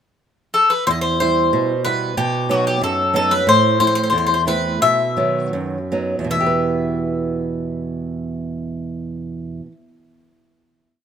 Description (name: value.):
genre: greek folk, Greek bouzouki band.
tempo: 73-92 BPM.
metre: 2/4.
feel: straight.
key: E harmonic minor.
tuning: A4 = 440 Hz.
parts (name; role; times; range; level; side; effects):
Greek bouzouki; melody; 0.5-9.7 s; F#4 to E5; -17 LUFS; left 3 dB; none.
flamenco guitar; accompaniment; 0.9-9.9 s; E2 to B4; -20 LUFS; right 3 dB; none.
room: moderate plate reverb, RT60 3.1 s.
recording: none.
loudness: -16 LUFS.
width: side -8 dB against mid.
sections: 0.0-0.9 pickup bar; 0.9-6.3 A section; 6.3-9.6 final chord.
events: slowing down 3.5-6.3.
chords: 0.0 N.C.; 0.9 Em; 2.2 B; 3.5 Am; 4.8 B; 6.3 Em.